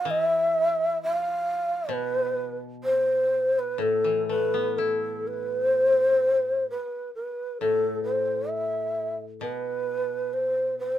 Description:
japanese traditional, Japanese chamber music; 60-68 BPM; 2/4; rubato; A hirajoshi; A4 = 438 Hz
breathy mellow long shakuhachi; melody; 0.0-11.0 s; A4 to F5; -24 LUFS; equal
koto; accompaniment; 0.0-11.0 s; A2 to E4; -31 LUFS; left 5 dB
light reverb; -23 LUFS; side -11 dB against mid
0.0-5.8 A section; 5.8-11.0 B section
| 0.07 0.99 | 1.91 2.84 | 3.80 4.80 | 5.78 6.72 | 7.63 8.52 | 9.43 10.35

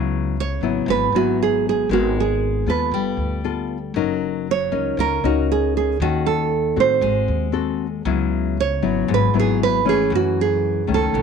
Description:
bossa nova; 117 BPM; 4/4; straight; A4 = 440 Hz
nylon-string guitar; accompaniment; 0.0-11.2 s; F#2 to A#4; -22 LUFS; left 11 dB
upright bass; bass; 0.0-11.2 s; F#1 to A2; -25 LUFS; equal
nylon-string guitar; melody; 0.4-11.2 s; F#4 to C#5; -20 LUFS; right 10 dB
light reverb, small room ambience; 1960s-style stereo with parts hard left and right; -18 LUFS; side -6 dB against mid
0.0-11.2 A section
0.0 C#m7; 1.9 G#m9; 2.9 G9; 3.9 F#6; 6.0 D#m7b5; 7.0 G#7b9; 8.1 C#m7; 10.1 F#m7
0.36 0.87 1.38 | 1.90 2.41 2.92 3.44 | 3.95 4.46 4.97 5.49 | 6.00 6.51 7.02 7.54 | 8.05 8.56 9.08 9.59 | 10.10 10.61 11.13

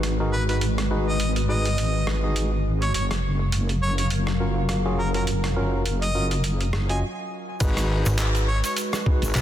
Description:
glitch hop; 103 BPM; 4/4; swing 57% on 16ths; G# dorian; A4 = 439 Hz
warbly tape-like pad; sustained chords; 0.0-9.4 s; F#3 to E#5; -31 LUFS; left 1 dB; chorus, built-in reverb, phaser, sidechain pumping
tine electric piano; stabs; 0.0-9.4 s; C#4 to D#5; -30 LUFS; right 1 dB; sidechain pumping, low-pass filter, dub echo
wobble bass; bass; 0.0-9.3 s; F#1 to G#1; -24 LUFS; equal; chorus
boom bap sampler-style drum kit; drums; 0.0-9.4 s; crash cymbal, handclaps, hi-hat, rim click; -31 LUFS; right 1 dB; studio reverb, soft clipping on snare
bright harmonica; melody; 0.3-8.7 s; A#4 to G#5; -30 LUFS; equal; vintage 12-bit sampler grit, dub echo
electronic kick drum; drums; 7.6-9.2 s; -22 LUFS; equal; studio reverb
egg shaker; percussion; 7.6-9.4 s; -36 LUFS; left 2 dB
slap-like FM bass; bass; 8.1-9.4 s; G#1 to B1; -22 LUFS; equal
light reverb, digital ambience; dense, heavily limited modern master; -21 LUFS; side -11 dB against mid
0.0-7.6 A section; 7.6-9.4 B section
filter sweep on ambient pad 0.0-7.6; stop 7.0-7.6; drop 7.6-9.4
0.0 G#m7; 2.9 F#maj7; 7.6 G#m7
0.03 | 0.62 1.20 1.78 2.36 | 2.95 3.53 4.11 4.70 | 5.28 5.86 6.44 7.03 | 7.61 8.19 8.77 9.36

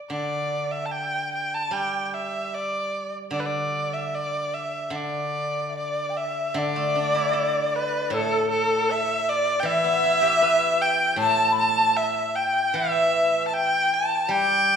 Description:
chinese traditional, Chinese chamber ensemble; 76 BPM; 2/4; rubato; D zhi mode; A4 = 441 Hz
rich erhu; melody; 0.1-14.8 s; A4 to A5; -23 LUFS; right 1 dB
steel-string zither; accompaniment; 0.1-14.8 s; A2 to B4; -30 LUFS; right 2 dB
breathy bright xiao; second line; 5.7-14.8 s; A4 to B5; -26 LUFS; left 4 dB
wet recital hall reverb, RT60 1.4 s; minimal, uncompressed stereo recording; -21 LUFS; side -7 dB against mid
0.0-6.6 A section; 6.6-14.8 B section
| 0.11 0.93 | 1.73 2.53 | 3.33 4.13 | 4.93 5.75 | 6.56 7.35 | 8.12 8.89 | 9.65 10.42 | 11.19 11.97 | 12.76 13.54 | 14.31

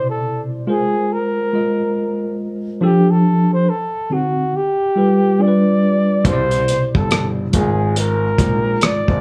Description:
R&B, neo-soul; 70 BPM; 4/4; swing 61% on 16ths; A4 = 441 Hz
breathy flugelhorn; melody; 0.0-9.2 s; F#4 to D5; -22 LUFS; equal
tine electric piano; accompaniment; 0.0-9.2 s; B2 to Eb5; -20 LUFS; equal
cloth-damped thuddy drum kit; drums; 6.2-9.2 s; hi-hat, kick drum, rim click; -20 LUFS; equal
warm grand piano; bass; 6.3-9.2 s; G1 to C2; -23 LUFS; equal
moderate studio reverb, RT60 0.5 s; small room reverb; -17 LUFS; mono
0.0-9.2 A section
0.0 Cmaj9; 0.7 Ab69; 2.8 F69; 3.7 D7b9; 4.5 G9; 5.4 G7; 6.2 Cmaj9; 7.5 Ab69
0.25 1.10 1.96 | 2.82 3.68 4.53 5.39 | 6.25 7.11 7.96 8.82

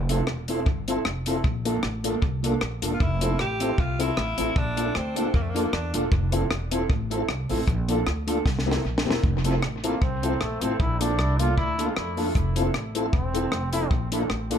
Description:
ska; 154 BPM; 4/4; swing 55% on 8ths; F major; A4 = 440 Hz
upright bass; bass; 0.0-14.6 s; E1 to F2; -28 LUFS; equal
mellow electric guitar; accompaniment; 0.1-14.6 s; Bb3 to Bb4; -30 LUFS; right 3 dB; tape echo
mellow tonewheel organ; stabs; 0.1-14.6 s; Bb3 to A4; -30 LUFS; left 4 dB; chorus vibrato, fast rotary speaker, tape echo
compact cocktail drum kit; drums; 0.1-14.6 s; hi-hat, kick drum, rim click, snare drum; -27 LUFS; equal; tape echo
warm tenor saxophone; melody; 2.9-6.0 s; A3 to G4; -31 LUFS; left 1 dB; tape echo
bright trombone; melody; 9.8-13.9 s; Ab3 to F4; -30 LUFS; equal; tape echo
light reverb; -22 LUFS; side -8 dB against mid
0.0-9.2 A section; 9.2-14.6 B section
drum fill 8.5-9.2; trombone solo 9.2-14.6
0.0 Fmaj7; 1.4 Bbmaj7; 3.0 Fmaj7; 4.6 Bbmaj7; 6.1 Fmaj7; 7.7 Bbmaj7; 8.5 C7; 9.2 Fmaj7; 10.8 Bbmaj7; 12.4 Fmaj7; 13.9 Bbmaj7
0.27 0.66 1.05 | 1.44 1.83 2.22 2.61 | 3.00 3.39 3.78 4.17 | 4.56 4.95 5.34 5.73 | 6.12 6.51 6.90 7.29 | 7.68 8.07 8.46 8.85 | 9.24 9.63 10.02 10.41 | 10.79 11.19 11.57 11.96 | 12.35 12.74 13.13 13.52 | 13.91 14.30

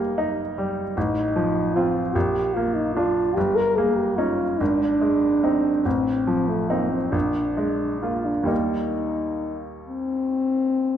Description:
classical, romantic duo for French horn and grand piano; 42-51 BPM (dotted quarters); 6/8; rubato; Eb major; A4 = 440 Hz
warm French horn; melody; 0.0-11.0 s; A3 to Bb4; -22 LUFS; left 1 dB
bright baby grand piano; accompaniment; 0.0-11.0 s; G1 to F4; -24 LUFS; right 1 dB
moderate scoring stage reverb, RT60 1.8 s; dark, warm production; -20 LUFS; side -9 dB against mid
0.0-11.0 A section
0.0 Eb/G; 1.0 F7/A; 2.1 Bb; 3.4 Eb7/G; 4.6 Ab; 5.8 F7/A; 7.1 Bb7; 8.5 Eb
| 0.96 2.15 | 3.36 4.60 | 5.85 7.14 | 8.50 9.88

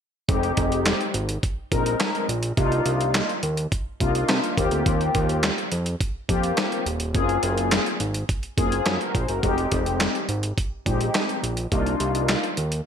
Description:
early-eighties boogie funk; 105 BPM; 4/4; straight; F dorian; A4 = 440 Hz
mellow synth brass; accompaniment; 0.3-12.5 s; Ab3 to C5; -25 LUFS; left 3 dB; chorus
fat analog bass; bass; 0.3-12.8 s; Eb1 to C3; -25 LUFS; right 1 dB
dusty soul sampler-style drum kit; drums; 0.3-12.8 s; handclaps, hi-hat, kick drum, snare drum; -25 LUFS; right 1 dB; overdrive, gated reverb
moderate plate reverb, RT60 1.3 s; bright 1980s-style digital production; -21 LUFS; side -8 dB against mid
0.3-12.9 A section
0.3 Fm9; 2.6 Cm11; 4.6 Eb69; 7.1 Gbmaj9#11; 9.4 Fm9; 11.7 Cm11
| 0.29 0.86 1.43 2.00 | 2.58 3.15 3.72 4.29 | 4.86 5.43 6.00 6.58 | 7.15 7.72 8.29 8.86 | 9.43 10.00 10.57 11.15 | 11.72 12.29

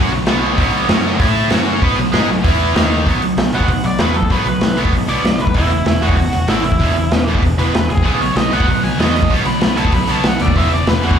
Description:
punk rock; 192 BPM; 4/4; straight; B mixolydian; A4 = 440 Hz
crunchy overdriven guitar; riff; 0.0-11.2 s; E2 to B4; -19 LUFS; right 9 dB; slapback echo
distorted electric guitar; riff; 0.0-11.2 s; E2 to B4; -21 LUFS; left 12 dB; overdrive, slapback echo
heavy high-gain guitar; riff; 0.0-3.1, 8.0-11.2 s; E2 to B4; -23 LUFS; left 1 dB; distortion, slapback echo
growling picked electric bass; bass; 0.0-11.1 s; E1 to B2; -20 LUFS; equal; overdrive
raw garage drum kit; drums; 0.3-11.2 s; hi-hat, kick drum, snare drum; -17 LUFS; equal
biting lead guitar; melody; 3.5-11.2 s; E4 to B5; -21 LUFS; equal; overdrive, slapback echo
small room ambience; live gig heard through the venue's PA, club reverb; -12 LUFS; side -8 dB against mid
0.0-3.1 A section; 3.1-11.2 B section
lead electric guitar solo 3.1-11.2
0.0 B5; 0.9 F#5; 1.2 A5; 1.5 F#5; 1.8 B; 2.4 E5; 2.8 D#5; 3.1 B5; 5.6 E5; 8.1 B5; 10.6 E5
0.27 | 0.58 0.89 1.20 1.51 | 1.82 2.13 2.44 2.75 | 3.06 3.37 3.69 4.00 | 4.31 4.62 4.93 5.24 | 5.55 5.87 6.18 6.49 | 6.80 7.12 7.43 7.74 | 8.05 8.37 8.68 8.99 | 9.31 9.62 9.93 10.25 | 10.56 10.87 11.18

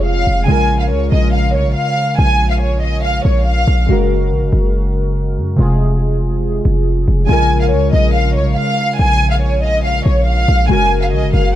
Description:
hip hop, drill; 141 BPM; 4/4; half-time; Bb minor; A4 = 442 Hz
dark studio violin section; melody; 0.0-3.9, 7.3-11.5 s; Db5 to Ab5; -17 LUFS; equal; low-pass filter, digital delay
warbly lo-fi synth keys; accompaniment; 0.0-11.6 s; C3 to Bb4; -18 LUFS; equal; chorus, phaser, low-pass filter
hard-hitting 808-style bass; bass; 0.0-11.6 s; F1 to Gb2; -15 LUFS; equal
small room ambience; -12 LUFS; side -12 dB against mid
0.0-7.3 A section; 7.3-11.6 B section
0.5 Bbm7; 3.9 Gbadd9; 5.6 Fm; 7.3 Bbm7; 10.7 Gbadd9
0.06 | 0.48 0.91 1.33 1.76 | 2.19 2.61 3.04 3.46 | 3.89 4.31 4.74 5.16 | 5.59 6.01 6.44 6.87 | 7.29 7.72 8.14 8.57 | 8.99 9.42 9.85 10.27 | 10.70 11.12 11.55

